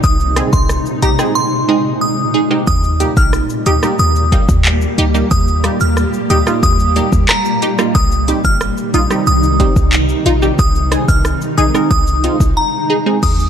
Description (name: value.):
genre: dancehall.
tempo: 91 BPM.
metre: 4/4.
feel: straight.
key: unclear.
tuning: A4 = 439 Hz.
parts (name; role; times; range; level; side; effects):
glassy synth bell; melody; 0.0-13.4 s; Bb5 to F6; -19 LUFS; equal; chorus, analog delay.
granular cloud pad; sustained chords; 0.0-13.2 s; Bb2 to G4; -18 LUFS; equal; built-in reverb, sidechain pumping.
clean 808-style bass; bass; 0.0-13.5 s; G1 to Eb2; -16 LUFS; equal; none.
afro-pop drum kit; drums; 0.0-13.5 s; crash cymbal, handclaps, hi-hat, kick drum, rim click, shaker; -16 LUFS; equal; vintage 12-bit sampler grit.
punchy chord stab; accompaniment; 0.4-13.2 s; G3 to Bb4; -19 LUFS; right 2 dB; chorus.
room: light reverb.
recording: none.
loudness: -11 LUFS.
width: side -8 dB against mid.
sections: 0.0-13.2 A section.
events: drums muted 1.4-2.7, 12.6-13.2.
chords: 0.0 Ab; 2.7 Eb; 8.0 Cm; 10.6 Ab.